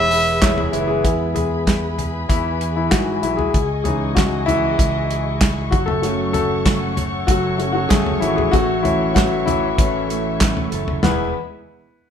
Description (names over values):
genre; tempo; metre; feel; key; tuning
piano-driven pop; 96 BPM; 4/4; straight; E major; A4 = 439 Hz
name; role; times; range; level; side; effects
clear trumpet; melody; 0.0-0.7 s; E5; -17 LUFS; right 1 dB; none
clear concert grand piano; accompaniment; 0.0-11.3 s; E2 to C#5; -20 LUFS; left 2 dB; none
muted studio string section; sustained chords; 0.0-11.3 s; G#3 to C#6; -29 LUFS; left 2 dB; none
fingerpicked steel-string acoustic guitar; riff; 0.0-1.1, 6.0-11.3 s; E2 to A4; -27 LUFS; right 6 dB; none
fingered electric bass; bass; 0.0-11.3 s; E1 to G#2; -25 LUFS; equal; none
damped 70s drum kit; drums; 0.1-11.2 s; handclaps, hi-hat, kick drum, snare drum, toms; -20 LUFS; equal; none
room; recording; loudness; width
moderate large studio reverb, RT60 0.9 s; band playing live in one room; -16 LUFS; side -8 dB against mid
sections
0.0-1.0 A section; 1.0-11.0 B section; 11.0-12.1 C section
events
grand piano solo 1.0-11.0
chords
0.0 E; 3.5 C#madd9; 5.7 F#m; 8.5 A; 11.0 E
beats
0.42 | 1.05 1.67 2.29 2.92 | 3.54 4.17 4.79 5.42 | 6.04 6.66 7.29 7.91 | 8.54 9.16 9.79 10.41 | 11.03